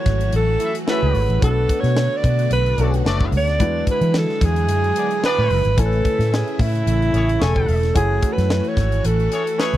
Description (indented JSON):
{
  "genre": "polished 1980s jazz-funk pop",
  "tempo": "110 BPM",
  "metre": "4/4",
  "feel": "swing 54% on 16ths",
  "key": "F# minor",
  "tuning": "A4 = 441 Hz",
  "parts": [
    { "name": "breathy alto saxophone", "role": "melody", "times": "0.0-9.8 s", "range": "E4 to D5", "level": "-21 LUFS", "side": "right 3 dB", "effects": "none" },
    { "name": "warm grand piano", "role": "accompaniment", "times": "0.0-9.8 s", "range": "G#3 to G#5", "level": "-28 LUFS", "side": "left 5 dB", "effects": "wide subtle chorus" },
    { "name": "string machine, violins", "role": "sustained chords", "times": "0.0-9.8 s", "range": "C#3 to F#4", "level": "-28 LUFS", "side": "equal", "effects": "ensemble chorus" },
    { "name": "vintage muted fingered electric bass", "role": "bass", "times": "0.1-9.8 s", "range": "E1 to E3", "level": "-19 LUFS", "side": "equal", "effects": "none" },
    { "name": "tight funk drum kit", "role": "drums", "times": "0.1-9.8 s", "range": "hi-hat, kick drum, snare drum", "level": "-22 LUFS", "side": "equal", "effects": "none" },
    { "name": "clear horn section", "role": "second line", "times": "0.6-9.8 s", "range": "A3 to G#5", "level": "-26 LUFS", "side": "left 4 dB", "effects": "none" }
  ],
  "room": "little or no reverb",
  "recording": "dry, close 1970s-style studio recording",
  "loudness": "-16 LUFS",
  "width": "side -13 dB against mid",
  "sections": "0.0-9.8 A section",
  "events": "none",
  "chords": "0.0 F#m9; 1.4 Bm9; 3.6 E9; 5.8 Amaj7; 8.0 F#m9"
}